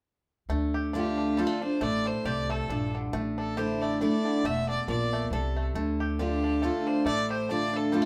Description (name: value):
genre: bluegrass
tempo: 137 BPM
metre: 3/4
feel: swing 56% on 8ths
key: D minor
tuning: A4 = 440 Hz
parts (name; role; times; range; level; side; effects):
- bluegrass banjo; melody; 0.5-8.1 s; D3 to G4; -40 LUFS; equal; none
- picked steel-string acoustic guitar; accompaniment; 0.5-8.1 s; E2 to F4; -31 LUFS; equal; none
- upright bass; bass; 0.5-8.0 s; E1 to D2; -35 LUFS; equal; none
- clear fiddle; melody; 1.0-8.1 s; G4 to E5; -35 LUFS; equal; none
room: moderate studio reverb, RT60 0.6 s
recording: band playing live in one room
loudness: -29 LUFS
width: mono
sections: 0.5-8.1 A section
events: none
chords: 0.5 Dm; 3.1 Asus4; 5.7 Dm